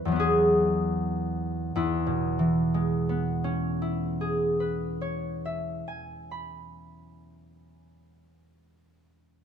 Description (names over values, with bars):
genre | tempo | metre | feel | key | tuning
classical, solo harp piece | 42 BPM (dotted quarters) | 6/8 | rubato | E major | A4 = 440 Hz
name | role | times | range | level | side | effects
concert harp | solo | 0.0-8.9 s | E2 to B5 | -25 LUFS | equal | none
room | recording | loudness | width
wet stone room reverb, RT60 1.4 s | minimal, uncompressed stereo recording | -24 LUFS | side -8 dB against mid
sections
0.0-1.8 A section; 1.8-7.4 B section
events
slowing down 0.0-1.8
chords
0.0 Eadd9; 1.8 E6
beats
0.20 | 1.75 3.17 | 4.62 6.02